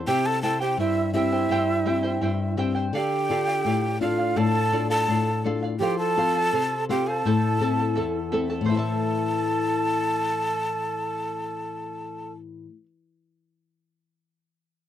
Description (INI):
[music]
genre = andean folk, Andean ensemble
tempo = 84 BPM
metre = 2/4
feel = straight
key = A minor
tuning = A4 = 440 Hz
[part]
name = charango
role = accompaniment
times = 0.0-12.9 s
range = E4 to A5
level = -31 LUFS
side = right 3 dB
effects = none
[part]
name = flamenco guitar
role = accompaniment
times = 0.0-12.8 s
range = E2 to E5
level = -26 LUFS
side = left 4 dB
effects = none
[part]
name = breathy mellow quena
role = melody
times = 0.1-12.3 s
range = E5 to A5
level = -27 LUFS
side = left 1 dB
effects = none
[part]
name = bright reedy large quena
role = second line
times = 0.1-12.3 s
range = E4 to A4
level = -28 LUFS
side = right 8 dB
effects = none
[sound]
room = light reverb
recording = dry, close 1970s-style studio recording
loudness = -22 LUFS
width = side -10 dB against mid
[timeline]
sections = 0.0-8.7 A section; 8.7-11.6 B section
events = none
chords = 0.1 C; 2.9 Dm; 5.8 F; 7.2 Am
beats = | 0.07 0.79 | 1.50 2.22 | 2.94 3.66 | 4.37 5.09 | 5.81 6.53 | 7.25 7.96 | 8.68 9.40 | 10.12 10.84